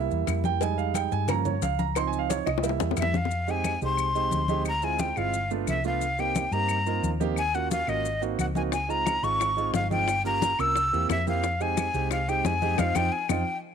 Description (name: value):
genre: Afro-Cuban jazz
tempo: 177 BPM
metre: 4/4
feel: straight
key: F minor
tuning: A4 = 441 Hz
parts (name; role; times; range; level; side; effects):
- warm concert grand piano; accompaniment; 0.0-13.4 s; F3 to C6; -30 LUFS; right 13 dB; none
- hollow-body short-scale fingered electric bass; bass; 0.0-13.4 s; G1 to G2; -30 LUFS; left 2 dB; none
- congas; percussion; 0.1-13.4 s; none; -33 LUFS; left 3 dB; none
- maracas; percussion; 0.1-13.4 s; none; -40 LUFS; left 21 dB; none
- claves; percussion; 0.3-13.4 s; none; -39 LUFS; left 18 dB; none
- cowbell and bongos; percussion; 0.3-3.3, 8.7-13.4 s; none; -32 LUFS; left 15 dB; none
- breathy bright jazz flute; melody; 3.0-13.6 s; Eb5 to E6; -27 LUFS; left 2 dB; none
room: light reverb, studio ambience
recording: 1960s-style stereo with parts hard left and right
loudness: -24 LUFS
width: side -7 dB against mid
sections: 0.0-3.3 A section; 3.3-13.7 B section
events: grand piano solo 0.0-3.3; drum fill 2.5-3.3, 13.5; band accent 12.8-13.7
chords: 0.0 C7; 0.6 Fm7; 1.3 Gm7b5; 2.0 Dbmaj7; 2.6 C7; 3.3 Fm7; 4.7 Dm7b5; 5.3 G7; 6.0 Cm7; 7.4 Ebm7; 8.0 Ab7; 8.7 Dbmaj7; 10.1 Gm7b5; 10.8 C7; 11.4 Fm7